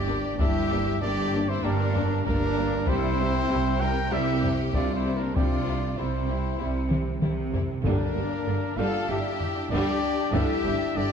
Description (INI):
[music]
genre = cinematic, epic orchestral film score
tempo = 97 BPM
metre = 4/4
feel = straight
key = G dorian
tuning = A4 = 440 Hz
[part]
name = rich studio violin section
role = melody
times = 0.0-11.1 s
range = D4 to Bb4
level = -34 LUFS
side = left 4 dB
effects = none
[part]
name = hollow small flute group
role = second line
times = 0.0-11.1 s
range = D4 to Bb4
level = -35 LUFS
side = left 4 dB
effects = none
[part]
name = warm French horn section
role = sustained chords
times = 0.0-11.1 s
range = Bb3 to G4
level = -33 LUFS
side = left 5 dB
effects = none
[part]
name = mellow trumpet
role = stabs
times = 0.0-11.1 s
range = Bb4 to G5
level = -32 LUFS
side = right 1 dB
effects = none
[part]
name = clear symphonic cello section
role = bass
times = 0.0-11.0 s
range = G2 to C3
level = -31 LUFS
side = right 3 dB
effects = none
[part]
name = rich symphonic double bass section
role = bass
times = 0.0-11.0 s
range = G1 to C2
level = -30 LUFS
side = right 3 dB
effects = none
[part]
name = rich studio violin section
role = second line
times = 0.1-11.1 s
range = C4 to E4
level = -38 LUFS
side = left 4 dB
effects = none
[part]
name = rich chamber viola section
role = accompaniment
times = 0.1-11.0 s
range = D3 to Bb3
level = -35 LUFS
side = equal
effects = none
[part]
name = bright trombone section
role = sustained chords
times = 0.4-10.6 s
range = G3 to G4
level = -40 LUFS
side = right 3 dB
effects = none
[part]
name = taiko ensemble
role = drums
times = 0.4-10.9 s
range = none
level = -30 LUFS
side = left 1 dB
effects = none
[part]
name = timpani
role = percussion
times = 7.8-8.7 s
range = G2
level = -33 LUFS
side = left 1 dB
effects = none
[sound]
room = moderate concert hall reverb, RT60 2.2 s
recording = dark, warm production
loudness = -23 LUFS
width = side -7 dB against mid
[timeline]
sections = 0.0-11.1 A section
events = drum fill 6.9-7.8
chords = 0.0 Gm; 2.9 C; 7.8 Gm